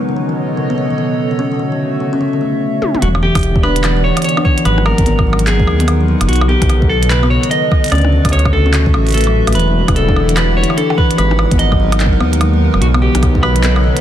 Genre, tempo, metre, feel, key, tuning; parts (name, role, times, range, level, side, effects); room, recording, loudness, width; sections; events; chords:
IDM; 147 BPM; 4/4; swing 62% on 16ths; A4 = 439 Hz
warbly tape-like pad; sustained chords; 0.0-14.0 s; B2 to F#5; -21 LUFS; equal; chorus, built-in reverb
kalimba; arpeggios; 0.0-14.0 s; C#3 to D4; -18 LUFS; left 2 dB; tape echo
bubbling stepped-filter texture; texture; 0.0-2.6 s; C#4 to C#5; -31 LUFS; right 3 dB
glitchy drum kit; drums; 2.8-14.0 s; handclaps, hi-hat, percussion blips, toms; -21 LUFS; equal
clean electric guitar; melody; 3.0-14.0 s; F#4 to D#5; -18 LUFS; equal; vintage 12-bit sampler grit, tape echo
dark detuned saw bass; bass; 3.0-13.9 s; E1 to D#2; -14 LUFS; equal
electronic kick drum; drums; 3.4-13.4 s; -15 LUFS; equal
light reverb; dense, heavily limited modern master; -11 LUFS; side -11 dB against mid
0.0-3.0 A section; 3.0-14.0 B section
filter sweep on kalimba 0.0-3.0; drum fill 2.8
0.0 B9; 1.4 Dmaj7 (rootless); 3.0 Em7; 4.7 G#m9; 6.3 B9; 7.9 Dmaj7; 9.6 Em7; 11.2 G#m9; 12.8 B9